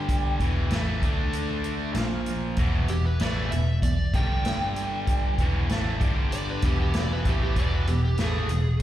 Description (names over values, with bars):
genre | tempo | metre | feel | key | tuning
blues rock power trio and southern rock | 96 BPM | 4/4 | straight | unclear | A4 = 440 Hz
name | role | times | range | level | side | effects
overdriven slide guitar | melody | 0.0-8.8 s | G4 to G5 | -33 LUFS | right 1 dB | slapback echo, analog delay
distorted electric guitar | riff | 0.0-8.8 s | E2 to D4 | -28 LUFS | equal | overdrive, slapback echo
vintage muted picked electric bass | bass | 0.0-8.8 s | E1 to D2 | -27 LUFS | equal | none
overdriven tonewheel organ | sustained chords | 0.1-8.6 s | G3 to E#5 | -41 LUFS | right 3 dB | none
vintage drum kit | drums | 0.1-8.8 s | hi-hat, kick drum, snare drum | -27 LUFS | equal | none
room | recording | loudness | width
light reverb | live gig heard through the venue's PA, recital hall reverb | -23 LUFS | side -12 dB against mid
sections
0.0-8.8 A section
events
none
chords
0.4 E; 1.0 D5; 2.0 A#5; 2.6 E; 4.1 G5; 5.4 E; 6.0 G5; 6.6 E